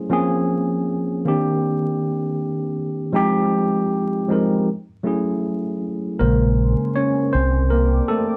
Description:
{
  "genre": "hip hop",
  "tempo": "79 BPM",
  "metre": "4/4",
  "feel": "swing 63% on 16ths",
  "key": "Bb minor",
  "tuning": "A4 = 440 Hz",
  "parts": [
    { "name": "tine electric piano", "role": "accompaniment", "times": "0.0-8.4 s", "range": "Db3 to Db5", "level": "-21 LUFS", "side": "equal", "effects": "cassette tape" },
    { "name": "deep dark ambient pad", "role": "sustained chords", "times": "6.5-8.4 s", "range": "Db4 to D6", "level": "-33 LUFS", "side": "equal", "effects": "chorus, built-in reverb" },
    { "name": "deep dub fingered electric bass", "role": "bass", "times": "6.2-8.0 s", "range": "Bb1 to C2", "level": "-20 LUFS", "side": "equal", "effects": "none" }
  ],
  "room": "moderate studio ambience, RT60 0.5 s",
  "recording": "dark, warm production, vinyl crackle, lossy compression artefacts",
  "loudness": "-21 LUFS",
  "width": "mono",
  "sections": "0.0-6.2 A section; 6.2-8.4 B section",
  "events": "filter sweep on tine electric piano 0.0-6.2; tine electric piano solo 6.2-8.4",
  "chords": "0.1 Bbm9; 1.3 Cm9; 3.2 Fm9; 4.7 Gbm9; 6.2 Bbm9; 7.3 C7sus2"
}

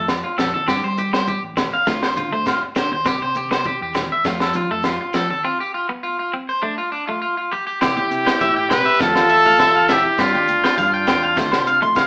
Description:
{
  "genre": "highlife guitar band",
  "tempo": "101 BPM",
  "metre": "4/4",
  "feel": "straight",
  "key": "C major",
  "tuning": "A4 = 441 Hz",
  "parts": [
    { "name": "semi-hollow electric guitar", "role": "accompaniment", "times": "0.0-12.0 s", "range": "A3 to C4", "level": "-31 LUFS", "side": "equal", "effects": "none" },
    { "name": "electric guitar at the edge of break-up", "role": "arpeggios", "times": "0.0-12.1 s", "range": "D4 to C6", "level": "-23 LUFS", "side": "equal", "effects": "none" },
    { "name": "picked electric bass", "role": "bass", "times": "0.0-12.1 s", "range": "A1 to G3", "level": "-32 LUFS", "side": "equal", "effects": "none" },
    { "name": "crunchy breakbeat drum kit", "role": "drums", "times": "0.1-12.1 s", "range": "kick drum, snare drum", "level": "-26 LUFS", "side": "equal", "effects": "none" },
    { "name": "agogo bells", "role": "percussion", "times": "0.1-12.1 s", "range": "none", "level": "-29 LUFS", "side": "equal", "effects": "none" },
    { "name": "shekere", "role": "percussion", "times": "0.1-12.1 s", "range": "none", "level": "-44 LUFS", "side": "equal", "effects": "none" },
    { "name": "congas", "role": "percussion", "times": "0.4-12.0 s", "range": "none", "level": "-35 LUFS", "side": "equal", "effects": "none" },
    { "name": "bright trumpet", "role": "melody", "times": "7.8-11.9 s", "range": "F4 to B4", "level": "-19 LUFS", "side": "equal", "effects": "none" },
    { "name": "warm alto saxophone", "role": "second line", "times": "7.8-11.9 s", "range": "D4 to G4", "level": "-30 LUFS", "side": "equal", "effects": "none" }
  ],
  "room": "wet studio reverb, RT60 0.8 s",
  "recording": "band playing live in one room, AM radio sound",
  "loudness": "-19 LUFS",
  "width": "mono",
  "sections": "0.0-7.8 A section; 7.8-12.1 B section",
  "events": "break 5.4-7.8",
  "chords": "0.0 F; 0.7 Gsus4; 1.9 Dm7; 3.1 C; 4.2 F; 5.4 G7sus4; 6.6 Dm; 7.2 G7(no3); 7.8 C; 9.0 Fmaj7; 10.2 G7sus4; 11.4 Dm7"
}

